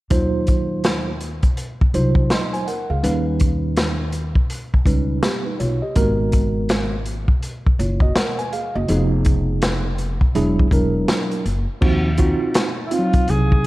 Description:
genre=hip hop, jazz-hop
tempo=82 BPM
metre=4/4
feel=swing 62% on 16ths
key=Eb dorian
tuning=A4 = 442 Hz
part: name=tine electric piano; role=accompaniment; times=0.1-13.7 s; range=F3 to C6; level=-22 LUFS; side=right 2 dB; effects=medium stereo tremolo
part: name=upright bass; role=bass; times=0.1-13.6 s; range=E1 to Eb2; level=-22 LUFS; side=equal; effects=none
part: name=crunchy breakbeat drum kit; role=drums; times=0.1-13.7 s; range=crash cymbal, hi-hat, kick drum, snare drum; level=-19 LUFS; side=equal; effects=none
part: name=breathy alto saxophone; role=melody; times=12.9-13.7 s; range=Fb4 to Ab4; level=-22 LUFS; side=equal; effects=none
room=light reverb, small room ambience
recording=dark, warm production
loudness=-17 LUFS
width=side -18 dB against mid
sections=0.1-11.8 A section; 11.8-13.7 B section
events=none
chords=0.1 Ebm69; 3.0 Eb7b13; 6.0 Abm9; 8.9 Fm7b5; 10.4 E9; 11.8 Ebm69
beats=| 0.11 0.84 1.57 2.30 | 3.04 3.77 4.50 5.23 | 5.96 6.69 7.42 8.16 | 8.89 9.62 10.35 11.08 | 11.81 12.55 13.28

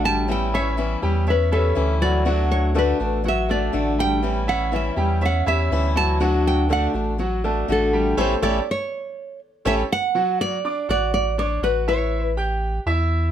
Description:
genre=latin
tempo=122 BPM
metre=4/4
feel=straight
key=D major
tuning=A4 = 439 Hz
part: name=nylon-string guitar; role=melody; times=0.0-12.3 s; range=A4 to A5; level=-23 LUFS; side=right 1 dB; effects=none
part: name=fingerpicked swing-style acoustic guitar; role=accompaniment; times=0.0-9.8 s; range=D3 to F#4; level=-25 LUFS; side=left 4 dB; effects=none
part: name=bright concert grand piano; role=arpeggios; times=0.0-13.3 s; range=F#3 to G6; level=-25 LUFS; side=equal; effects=none
part: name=pure sine sub bass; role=bass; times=0.0-13.3 s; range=A1 to E2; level=-23 LUFS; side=equal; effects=none
room=light reverb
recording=none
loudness=-19 LUFS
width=side -10 dB against mid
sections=0.0-10.1 A section; 10.1-13.3 B section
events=nylon-string guitar solo 0.0-10.1; band accent 8.2-10.1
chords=0.3 A7; 2.3 D; 4.2 A7; 6.2 D; 8.2 A7; 10.1 D; 12.1 A7(no3)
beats=| 0.29 0.78 1.28 1.77 | 2.26 2.75 3.25 3.74 | 4.23 4.73 5.22 5.71 | 6.20 6.70 7.19 7.68 | 8.17 8.67 9.16 9.65 | 10.15 10.64 11.13 11.63 | 12.12 12.62 13.11

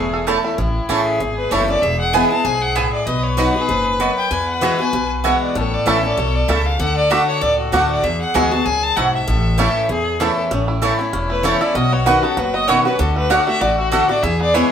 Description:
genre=bluegrass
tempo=194 BPM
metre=4/4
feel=swing 55% on 8ths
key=A major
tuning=A4 = 445 Hz
part: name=bluegrass banjo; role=melody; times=0.0-0.6, 5.9-14.7 s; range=E3 to A4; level=-25 LUFS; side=right 2 dB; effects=none
part: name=dark fiddle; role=second line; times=0.0-14.7 s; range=C#4 to B4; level=-23 LUFS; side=left 2 dB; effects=none
part: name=picked acoustic archtop guitar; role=accompaniment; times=0.0-14.7 s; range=E2 to F#4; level=-22 LUFS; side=left 2 dB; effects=none
part: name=upright bass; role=bass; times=0.0-14.6 s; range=E1 to E2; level=-23 LUFS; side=equal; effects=none
part: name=mandolin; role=stabs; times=0.3-14.6 s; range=A3 to C#6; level=-20 LUFS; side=right 4 dB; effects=none
part: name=clear fiddle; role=melody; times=1.4-14.7 s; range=F#4 to A5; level=-20 LUFS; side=left 1 dB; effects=none
room=wet studio reverb, RT60 0.8 s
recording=band playing live in one room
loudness=-15 LUFS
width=side -8 dB against mid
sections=0.6-10.5 A section; 10.5-14.7 B section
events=none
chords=0.0 A; 1.8 E; 3.1 B; 4.3 Eadd9; 5.6 A; 6.8 D; 8.0 Eadd9; 9.3 A; 11.8 Badd9; 13.0 D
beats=0.27 | 0.58 0.90 1.21 1.52 | 1.83 2.14 2.45 2.76 | 3.07 3.38 3.69 4.00 | 4.31 4.62 4.93 5.25 | 5.55 5.87 6.18 6.49 | 6.80 7.11 7.42 7.73 | 8.04 8.35 8.66 8.97 | 9.28 9.59 9.90 10.21 | 10.52 10.82 11.13 11.44 | 11.75 12.06 12.37 12.68 | 12.99 13.30 13.61 13.92 | 14.23 14.54

